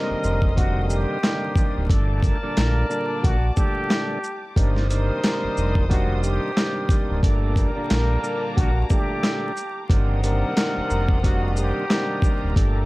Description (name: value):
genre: hip hop, boom-bap hip-hop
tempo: 90 BPM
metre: 4/4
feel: swing 58% on 16ths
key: unclear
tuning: A4 = 440 Hz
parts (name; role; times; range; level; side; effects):
- trumpet with plunger mute; melody; 0.0-12.5 s; F#4 to Bb4; -29 LUFS; equal; high-pass filter, low-pass filter, analog delay
- overdriven tonewheel organ; accompaniment; 0.0-12.9 s; G2 to D4; -28 LUFS; equal; slow rotary speaker, high-pass filter, low-pass filter
- warm studio string section; sustained chords; 0.0-12.9 s; A5 to Eb6; -38 LUFS; left 1 dB; high-pass filter, low-pass filter
- clear horn section; stabs; 0.0-12.9 s; D3 to A5; -32 LUFS; left 2 dB; high-pass filter, low-pass filter, analog delay
- sub bass with octave; bass; 0.1-12.9 s; D1 to Bb1; -22 LUFS; equal; none
- dusty soul sampler-style drum kit; drums; 0.2-12.7 s; handclaps, hi-hat, kick drum, shaker, snare drum; -21 LUFS; equal; overdrive, vintage 12-bit sampler grit
room: studio reverb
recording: dark, warm production, vinyl crackle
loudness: -19 LUFS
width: side -21 dB against mid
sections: 0.0-12.9 A section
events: none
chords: 0.0 Cm7; 1.9 Gmadd9; 4.6 Cm7; 7.2 Gmadd9; 9.9 Cm7